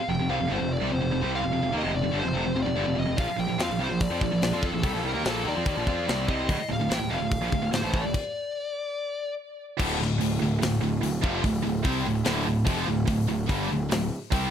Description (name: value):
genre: heavy metal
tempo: 145 BPM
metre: 4/4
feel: straight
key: D phrygian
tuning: A4 = 437 Hz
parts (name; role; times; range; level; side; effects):
- high-gain lead guitar; melody; 0.0-9.3 s; A4 to G5; -31 LUFS; left 1 dB; distortion, tape echo
- tight distorted guitar; riff; 0.0-14.5 s; D2 to F4; -31 LUFS; left 10 dB; distortion
- tight distorted guitar; riff; 0.1-14.5 s; D2 to F4; -30 LUFS; right 10 dB; distortion
- fuzz picked electric bass; bass; 0.1-14.5 s; D1 to F2; -31 LUFS; equal; overdrive
- tight metal drum kit; drums; 3.2-14.4 s; crash cymbal, hi-hat, kick drum, snare drum; -30 LUFS; equal; none
- scooped high-gain guitar; riff; 9.8-14.5 s; D2 to C4; -31 LUFS; equal; distortion
room: light reverb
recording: none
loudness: -24 LUFS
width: side -9 dB against mid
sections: 0.0-9.8 A section; 9.8-14.5 B section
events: stop 8.1-9.8; half time 9.8-14.5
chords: 0.0 F5; 3.2 Bb5; 6.5 Dm